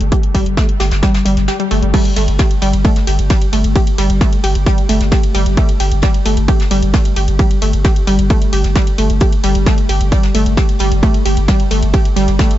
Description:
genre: driving peak-time techno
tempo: 132 BPM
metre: 4/4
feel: straight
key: unclear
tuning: A4 = 437 Hz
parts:
  - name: saturated sub bass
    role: bass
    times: 0.0-12.4 s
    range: G1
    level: -16 LUFS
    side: equal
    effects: overdrive, sidechain pumping, low-pass filter
  - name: punchy analog drum machine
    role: drums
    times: 0.0-12.6 s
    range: crash cymbal, hi-hat, ride cymbal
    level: -26 LUFS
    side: left 1 dB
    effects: none
  - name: wide unison pluck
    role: riff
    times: 0.1-12.4 s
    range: G3 to G4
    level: -17 LUFS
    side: equal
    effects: sidechain pumping, tape echo
  - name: electronic kick drum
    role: drums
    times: 0.1-12.5 s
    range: none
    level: -13 LUFS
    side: equal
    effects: overdrive
  - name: vintage brush drum kit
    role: drums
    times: 0.1-12.5 s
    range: hi-hat, snare drum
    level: -28 LUFS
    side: left 2 dB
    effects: high-pass filter on hats, high-pass filter on snare, high-pass filter on room
room: light reverb, small room reverb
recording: nothing above 7.8 kHz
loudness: -11 LUFS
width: side -13 dB against mid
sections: 0.0-1.9 A section; 1.9-12.6 B section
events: filter sweep on synth arpeggio sound 0.0-1.9; break 1.5-1.9; drop 1.9-12.6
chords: none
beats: | 0.12 0.57 1.03 1.48 | 1.94 2.39 2.85 3.30 | 3.76 4.21 4.67 5.12 | 5.57 6.03 6.48 6.94 | 7.39 7.85 8.30 8.76 | 9.21 9.66 10.12 10.57 | 11.03 11.48 11.94 12.39

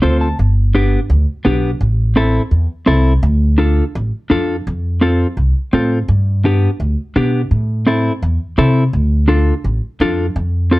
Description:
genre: latin, cumbia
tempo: 168 BPM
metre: 4/4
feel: straight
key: unclear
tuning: A4 = 440 Hz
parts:
  - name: semi-hollow electric guitar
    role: accompaniment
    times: 0.0-10.8 s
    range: B3 to A5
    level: -15 LUFS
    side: left 1 dB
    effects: none
  - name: upright bass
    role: bass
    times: 0.0-10.8 s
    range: G1 to C3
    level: -14 LUFS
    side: equal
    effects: none
room: light reverb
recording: dark, warm production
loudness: -13 LUFS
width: side -19 dB against mid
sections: 0.4-10.8 A section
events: clean electric guitar fill 0.0-0.4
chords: 0.4 G; 1.8 Am; 3.2 Dm; 4.7 F; 6.1 G; 7.5 Am; 8.9 Dm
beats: 0.03 | 0.38 0.74 1.10 1.45 | 1.81 2.17 2.52 2.88 | 3.23 3.59 3.95 4.30 | 4.66 5.02 5.37 5.73 | 6.08 6.44 6.80 7.15 | 7.51 7.87 8.22 8.58 | 8.94 9.29 9.65 10.00 | 10.36 10.72

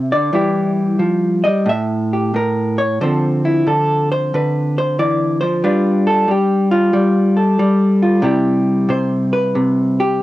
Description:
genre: solo jazz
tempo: 91 BPM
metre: 4/4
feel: swing 66% on 8ths, rubato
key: C major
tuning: A4 = 440 Hz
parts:
  - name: vintage hollow-body jazz guitar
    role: solo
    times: 0.0-10.2 s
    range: A2 to E5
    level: -14 LUFS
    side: equal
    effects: cassette tape
room: moderate booth ambience, RT60 0.2 s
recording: home recording on cassette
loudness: -14 LUFS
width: side -16 dB against mid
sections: 0.0-10.2 A section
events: hollow-body jazz guitar solo 0.0-10.2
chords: 0.3 Emmaj7; 1.7 N.C.; 3.0 Dm7; 5.6 Gsus2; 8.2 Cmaj7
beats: | 0.33 0.99 1.66 2.34 | 3.01 3.67 4.34 4.99 | 5.64 6.30 6.94 7.59 | 8.24 8.90 9.55 10.21

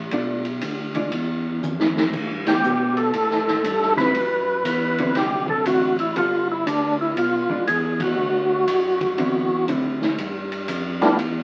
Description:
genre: soul jazz organ trio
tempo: 119 BPM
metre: 4/4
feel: swing 66% on 8ths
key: unclear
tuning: A4 = 440 Hz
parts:
  - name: tonewheel organ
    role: bass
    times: 0.0-11.4 s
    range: G1 to B2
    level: -30 LUFS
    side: equal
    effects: overdrive, chorus vibrato, slow rotary speaker
  - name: hollow-body jazz guitar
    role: accompaniment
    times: 0.1-10.0 s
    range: D3 to A4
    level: -28 LUFS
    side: equal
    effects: none
  - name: swinging big-band drum kit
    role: drums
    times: 0.1-11.4 s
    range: crash cymbal, hi-hat, kick drum, ride cymbal, snare drum, toms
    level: -28 LUFS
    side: equal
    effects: none
  - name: percussive tonewheel organ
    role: melody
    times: 2.5-11.2 s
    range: G3 to B4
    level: -23 LUFS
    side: equal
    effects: slow rotary speaker, overdrive, chorus vibrato
room: wet studio ambience, RT60 0.5 s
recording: very old 78 rpm record, vinyl crackle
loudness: -22 LUFS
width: mono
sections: 0.0-10.2 A section; 10.2-11.4 B section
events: drum fill 1.6-2.1; band accent 2.4, 7.9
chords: 0.1 Bm7b5; 1.1 N.C.; 2.1 A7(no3); 4.1 D9; 6.2 G9; 7.2 E7b9; 8.2 D9; 10.2 G9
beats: | 0.13 0.63 1.13 1.63 | 2.13 2.64 3.14 3.64 | 4.14 4.65 5.15 5.65 | 6.16 6.66 7.17 7.67 | 8.17 8.68 9.18 9.69 | 10.19 10.70 11.20

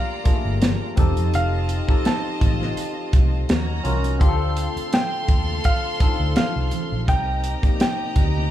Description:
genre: lush 1970s-style soul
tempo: 84 BPM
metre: 4/4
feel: swing 54% on 16ths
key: unclear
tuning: A4 = 438 Hz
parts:
  - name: clear baby grand piano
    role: melody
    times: 0.0-8.5 s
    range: F5 to A5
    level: -28 LUFS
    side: equal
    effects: none
  - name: warm studio violin section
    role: second line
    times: 0.0-8.5 s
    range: F4 to C6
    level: -30 LUFS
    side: equal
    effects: none
  - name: barky tine electric piano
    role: accompaniment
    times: 0.0-8.5 s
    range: A3 to D5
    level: -29 LUFS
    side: left 4 dB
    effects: overdrive, phaser
  - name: percussive tonewheel organ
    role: sustained chords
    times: 0.0-8.5 s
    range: C3 to Bb5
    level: -36 LUFS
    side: right 1 dB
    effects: fast rotary speaker, overdrive, chorus vibrato
  - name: vintage muted fingered electric bass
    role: bass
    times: 0.3-8.5 s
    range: F1 to F2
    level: -23 LUFS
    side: equal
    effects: none
  - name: tight funk drum kit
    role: drums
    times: 0.3-8.3 s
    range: hi-hat, kick drum, snare drum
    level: -20 LUFS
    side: equal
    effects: none
  - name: congas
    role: percussion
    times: 0.3-8.5 s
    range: none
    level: -34 LUFS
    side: right 8 dB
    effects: none
room: light reverb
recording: band playing live in one room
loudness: -18 LUFS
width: side -12 dB against mid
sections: 0.0-8.5 A section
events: none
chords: 0.0 Gm9; 1.0 F7; 3.5 Ebm7; 4.2 Dm7; 7.1 Cm9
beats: 0.61 | 1.33 2.05 2.77 3.49 | 4.21 4.92 5.64 6.36 | 7.08 7.80

